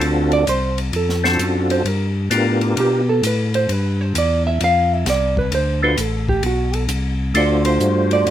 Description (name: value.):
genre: soul jazz organ trio.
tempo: 131 BPM.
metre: 4/4.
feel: swing 67% on 8ths.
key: unclear.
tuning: A4 = 440 Hz.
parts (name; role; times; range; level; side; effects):
percussive tonewheel organ; melody; 0.0-3.0, 5.8-8.3 s; A3 to C5; -18 LUFS; equal; slow rotary speaker, chorus vibrato.
hollow-body jazz guitar; accompaniment; 0.0-8.3 s; F#4 to F5; -20 LUFS; right 3 dB; none.
tonewheel organ; bass; 0.0-8.3 s; A1 to B2; -20 LUFS; left 1 dB; overdrive, slow rotary speaker.
compact cocktail drum kit; drums; 0.0-8.3 s; hi-hat, kick drum, ride cymbal, snare drum; -26 LUFS; left 2 dB; none.
room: light reverb.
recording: none.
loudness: -16 LUFS.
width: side -11 dB against mid.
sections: 0.0-8.3 A section.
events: hollow-body jazz guitar solo 0.0-8.3.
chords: 0.0 D7#9; 1.9 G7#9; 5.5 D7#9.